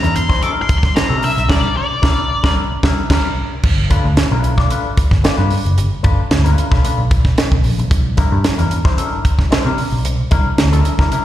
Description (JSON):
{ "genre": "funk", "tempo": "112 BPM", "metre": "4/4", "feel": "straight", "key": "unclear", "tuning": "A4 = 437 Hz", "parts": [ { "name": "octave-fuzz lead guitar", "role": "melody", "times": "0.0-2.5 s", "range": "D5 to D6", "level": "-19 LUFS", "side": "left 2 dB", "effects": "distortion, plate reverb, slapback echo" }, { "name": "electric guitar with an envelope filter", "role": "accompaniment", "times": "0.0-11.2 s", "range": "G3 to D5", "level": "-22 LUFS", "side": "left 5 dB", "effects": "plate reverb, slapback echo" }, { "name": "vintage muted picked electric bass", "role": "bass", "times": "0.0-11.1 s", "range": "F#1 to C3", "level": "-16 LUFS", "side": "equal", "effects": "none" }, { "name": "tight funk drum kit", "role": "drums", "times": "0.0-11.2 s", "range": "crash cymbal, hi-hat, kick drum, snare drum", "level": "-16 LUFS", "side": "equal", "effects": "slapback echo" } ], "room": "light reverb", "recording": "live gig heard through the venue's PA, recital hall reverb", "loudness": "-13 LUFS", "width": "side -13 dB against mid", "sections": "0.0-3.6 A section; 3.6-11.2 B section", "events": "lead electric guitar solo 0.0-3.6; band accent 1.5-3.6", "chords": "0.0 C9; 3.6 G9; 7.9 C9", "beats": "0.43 0.96 | 1.50 2.03 2.57 3.10 | 3.64 4.17 4.71 5.24 | 5.78 6.31 6.84 7.38 | 7.91 8.45 8.98 9.51 | 10.05 10.58 11.11" }